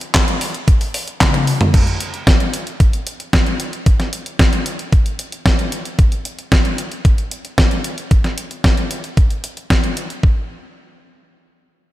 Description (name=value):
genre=italo disco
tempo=113 BPM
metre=4/4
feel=straight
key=none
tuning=none
part: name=detuned 8-bit digital drum machine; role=drums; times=0.0-10.2 s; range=crash cymbal, handclaps, hi-hat, snare drum, toms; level=-19 LUFS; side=equal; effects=gated reverb
part: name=electronic kick drum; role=drums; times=0.1-10.3 s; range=none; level=-14 LUFS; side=equal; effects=none
room=little or no reverb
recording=none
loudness=-14 LUFS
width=side -15 dB against mid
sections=0.0-1.7 A section; 1.7-10.2 B section; 10.2-11.9 C section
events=drum fill 1.2-1.7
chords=none